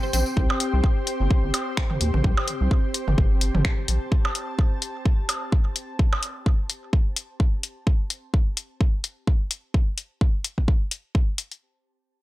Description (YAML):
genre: minimal techno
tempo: 128 BPM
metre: 4/4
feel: swing 57% on 16ths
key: unclear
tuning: A4 = 440 Hz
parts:
  - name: ethereal airy pad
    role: texture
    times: 0.0-7.9 s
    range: C4 to A5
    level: -31 LUFS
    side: left 1 dB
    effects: ensemble chorus, built-in reverb, sidechain pumping
  - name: rubbery square bass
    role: bass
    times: 0.1-4.0 s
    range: G1 to Eb2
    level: -22 LUFS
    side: equal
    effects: sidechain pumping
  - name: punchy analog drum machine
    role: drums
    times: 0.1-11.6 s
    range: finger snaps, hi-hat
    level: -27 LUFS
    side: left 4 dB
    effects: none
  - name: electronic kick drum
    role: drums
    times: 0.4-11.3 s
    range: none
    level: -20 LUFS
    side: equal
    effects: none
  - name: electronic percussion blips and toms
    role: percussion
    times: 0.5-6.2 s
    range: none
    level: -28 LUFS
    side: right 2 dB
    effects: overdrive, digital delay
room: little or no reverb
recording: none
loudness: -21 LUFS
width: side -17 dB against mid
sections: 0.0-11.6 A section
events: fade-out on ambient pad 0.0-7.9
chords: 0.0 C5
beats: | 0.37 0.84 1.30 1.77 | 2.24 2.71 3.18 3.65 | 4.12 4.59 5.05 5.52 | 5.99 6.46 6.93 7.40 | 7.87 8.34 8.80 9.27 | 9.74 10.21 10.68 11.15